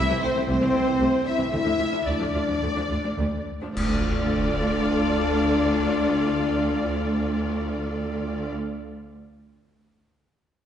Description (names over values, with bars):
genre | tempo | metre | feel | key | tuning
cinematic, epic orchestral film score | 103-121 BPM | 4/4 | straight | D minor | A4 = 439 Hz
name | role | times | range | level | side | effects
warm symphonic violin section | melody | 0.0-8.5 s | C5 to E5 | -33 LUFS | left 3 dB | none
hollow small flute group | second line | 0.0-8.5 s | C5 to E5 | -33 LUFS | right 1 dB | none
rich studio violin section | second line | 0.0-8.5 s | C5 to E5 | -34 LUFS | left 2 dB | none
warm symphonic viola section | accompaniment | 0.0-8.5 s | C3 to A4 | -31 LUFS | equal | none
warm French horn section | sustained chords | 0.0-8.5 s | C4 to E4 | -26 LUFS | left 2 dB | none
rich symphonic double bass section | bass | 0.0-8.5 s | C2 to D2 | -30 LUFS | right 2 dB | none
warm symphonic cello section | bass | 0.0-8.5 s | C2 to D2 | -29 LUFS | right 1 dB | none
clash cymbals and concert bass drum | percussion | 3.8-4.9 s | none | -32 LUFS | equal | none
sub drop | sound effects | 3.9-6.1 s | none | -37 LUFS | equal | none
room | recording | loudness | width
wet scoring stage reverb, RT60 1.6 s | heard from further back in the room, nothing above 11.0 kHz | -22 LUFS | side -9 dB against mid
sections
0.0-3.8 A section; 3.8-8.4 B section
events
slowing down 0.0-3.8; band accent 3.8-4.3; impact 3.8-6.1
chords
0.0 Am/C; 1.5 Dm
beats
0.49 1.00 | 1.53 2.07 2.62 3.18 | 3.76 4.34 4.92 5.49 | 6.07 6.65 7.22 7.80